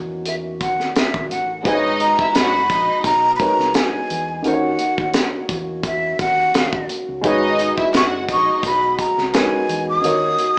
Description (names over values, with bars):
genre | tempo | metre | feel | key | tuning
lush 1970s-style soul | 86 BPM | 4/4 | swing 54% on 16ths | G# minor | A4 = 438 Hz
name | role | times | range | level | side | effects
dark baby grand piano | accompaniment | 0.0-10.6 s | D#3 to C#5 | -26 LUFS | equal | none
mellow French horn section | sustained chords | 0.0-10.6 s | D#3 to F#4 | -29 LUFS | equal | none
fingered electric bass | bass | 0.0-10.4 s | F#1 to E2 | -36 LUFS | equal | none
breathy jazz flute | melody | 0.3-10.6 s | E5 to D#6 | -21 LUFS | equal | none
tight funk drum kit | drums | 0.3-10.6 s | hi-hat, kick drum, snare drum | -24 LUFS | equal | none
warm studio string section | second line | 1.6-8.9 s | D#4 to F#5 | -25 LUFS | equal | none
group handclap | percussion | 7.9-9.5 s | none | -37 LUFS | equal | none
room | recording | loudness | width
moderate large studio reverb, RT60 1.1 s | band playing live in one room, small speaker sound | -19 LUFS | mono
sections
0.0-10.6 A section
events
none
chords
0.0 D#m7; 1.7 G#m11; 4.4 D#m7; 7.2 G#m11; 10.0 D#m7